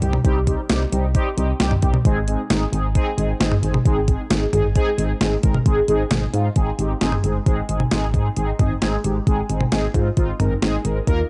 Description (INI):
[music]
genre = synth-pop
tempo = 133 BPM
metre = 4/4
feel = straight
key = Ab major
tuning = A4 = 440 Hz
[part]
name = mellow synth brass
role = accompaniment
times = 0.0-11.2 s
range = G3 to Bb4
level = -26 LUFS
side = equal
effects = chorus, phaser
[part]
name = solid FM bass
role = bass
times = 0.0-11.2 s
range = G1 to Ab2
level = -24 LUFS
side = equal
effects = transformer saturation
[part]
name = clean 12-bit digital drum machine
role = drums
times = 0.0-11.2 s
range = hi-hat, kick drum, snare drum, toms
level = -23 LUFS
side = equal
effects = overdrive
[sound]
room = little or no reverb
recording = dry, gritty hardware recording, cassette tape, nothing above 10.9 kHz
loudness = -20 LUFS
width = mono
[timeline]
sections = 0.0-5.7 A section; 5.7-7.5 B section; 7.5-11.3 C section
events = none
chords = 0.0 Cm; 2.1 Ab